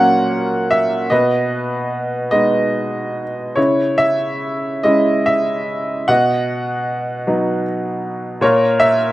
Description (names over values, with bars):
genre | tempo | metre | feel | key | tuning
classical, lyrical solo piano | 47-53 BPM (dotted quarters) | 6/8 | rubato | G# minor | A4 = 440 Hz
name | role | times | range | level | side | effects
bright upright piano | solo | 0.0-9.1 s | A#2 to F#5 | -15 LUFS | equal | none
room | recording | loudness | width
light reverb | close, detailed microphones | -15 LUFS | side -16 dB against mid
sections
0.0-9.1 A section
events
none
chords
0.0 F#/A#; 1.1 G#m/B; 3.6 C#m; 6.1 B; 8.4 F#/A# (rootless)